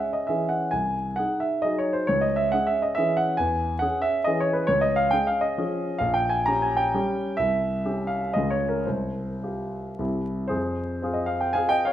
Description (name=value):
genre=classical, romantic triple-time dance for piano with dotted rhythms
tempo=101-148 BPM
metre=3/4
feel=rubato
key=C# minor, F minor from 4.7 s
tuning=A4 = 441 Hz
part: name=warm concert grand piano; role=solo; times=0.0-11.9 s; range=Bb1 to Bb5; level=-22 LUFS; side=equal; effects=none
room=wet recital hall reverb, RT60 1.4 s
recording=minimal, uncompressed stereo recording, vinyl crackle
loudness=-22 LUFS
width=side -11 dB against mid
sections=0.0-10.5 A section; 10.5-11.9 B section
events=none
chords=0.0 C#m; 0.7 G#7/B#; 2.1 C#m; 3.4 C#m/E; 4.7 Db; 6.0 Gdim/Bb; 7.4 C; 8.4 Db; 8.9 Csus4; 10.0 C; 10.5 Fm